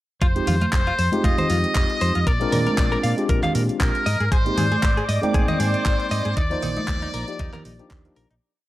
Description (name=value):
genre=nu-disco, nu disco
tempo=117 BPM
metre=4/4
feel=swing 55% on 16ths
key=F dorian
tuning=A4 = 441 Hz
part: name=muted trumpet section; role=melody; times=0.2-7.9 s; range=Bb4 to Eb5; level=-26 LUFS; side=left 1 dB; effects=analog delay
part: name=direct-recorded clean electric guitar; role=riff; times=0.2-8.3 s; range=Eb4 to F5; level=-29 LUFS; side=left 2 dB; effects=analog chorus
part: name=hollow-body short-scale fingered electric bass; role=bass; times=0.2-8.4 s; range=F1 to Bb2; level=-25 LUFS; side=equal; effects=none
part: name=electronic kick drum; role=drums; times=0.2-8.0 s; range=none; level=-22 LUFS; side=equal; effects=none
part: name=house drum kit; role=drums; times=0.2-8.4 s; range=handclaps, hi-hat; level=-32 LUFS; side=equal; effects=none
part: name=tine electric piano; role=accompaniment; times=0.4-8.3 s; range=F3 to G5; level=-26 LUFS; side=equal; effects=slow stereo tremolo
part: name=congas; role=percussion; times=0.5-7.6 s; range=none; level=-28 LUFS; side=right 2 dB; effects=none
part: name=lush unison pad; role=sustained chords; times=4.6-8.4 s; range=D5 to D6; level=-30 LUFS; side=left 2 dB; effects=chorus, phaser, sidechain pumping
room=digital ambience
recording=dry, gritty hardware recording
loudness=-18 LUFS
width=side -16 dB against mid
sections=0.2-8.4 groove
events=fade-out 5.7-8.4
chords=0.2 Fm7; 2.3 Bb13; 4.1 Abmaj7; 6.4 Ebmaj7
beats=| 0.22 0.73 1.24 1.76 | 2.27 2.78 3.29 3.81 | 4.32 4.83 5.34 5.86 | 6.37 6.88 7.40 7.91